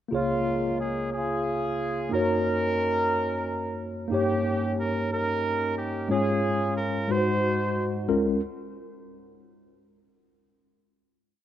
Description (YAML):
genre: gospel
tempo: 60 BPM (dotted quarters)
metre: 6/8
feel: straight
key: Db major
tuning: A4 = 436 Hz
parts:
  - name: clear horn section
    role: melody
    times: 0.1-8.1 s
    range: Ab3 to C5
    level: -28 LUFS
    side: right 1 dB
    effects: none
  - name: mellow tine electric piano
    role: accompaniment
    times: 0.1-8.4 s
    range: Db2 to Db5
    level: -26 LUFS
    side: left 1 dB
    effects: overdrive, fast stereo tremolo
room: moderate plate reverb, RT60 3.1 s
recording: rough home demo mix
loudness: -24 LUFS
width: side -11 dB against mid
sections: 0.1-8.1 A section; 8.1-10.1 final chord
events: none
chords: 0.1 Db6; 2.1 Gb6; 4.1 Eb7/G; 6.1 Db/Ab; 7.1 Ab7; 8.1 Db6